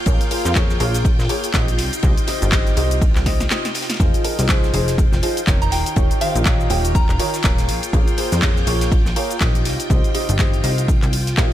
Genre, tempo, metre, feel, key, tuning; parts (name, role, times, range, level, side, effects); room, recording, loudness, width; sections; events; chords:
piano house; 122 BPM; 4/4; swing 58% on 16ths; A4 = 440 Hz
string machine, violins; sustained chords; 0.0-11.5 s; F4 to G5; -28 LUFS; equal; ensemble chorus, sidechain pumping
clear upright piano; riff; 0.0-11.5 s; C3 to F5; -24 LUFS; equal; wide subtle chorus, sidechain pumping, ping-pong delay
plucky analog bass; bass; 0.1-11.5 s; Eb1 to F2; -21 LUFS; equal; sidechain pumping
electronic kick drum; drums; 0.1-11.5 s; -18 LUFS; equal
house drum kit; drums; 0.1-11.5 s; handclaps, hi-hat, shaker, snare drum; -25 LUFS; left 1 dB
tight metal drum kit; drums; 0.1-11.5 s; ride cymbal, snare drum; -33 LUFS; left 2 dB
soft synth bell; melody; 5.6-7.6 s; F5 to Bb5; -26 LUFS; right 1 dB; chorus, ping-pong delay
light reverb, small room ambience; -15 LUFS; side -12 dB against mid
0.0-11.5 A section
drum fill 3.3-4.0; break 3.5-4.0
0.0 Bbm7; 1.8 Cm; 4.0 Fm7; 5.7 Eb7; 7.7 Bbm7; 9.7 Cm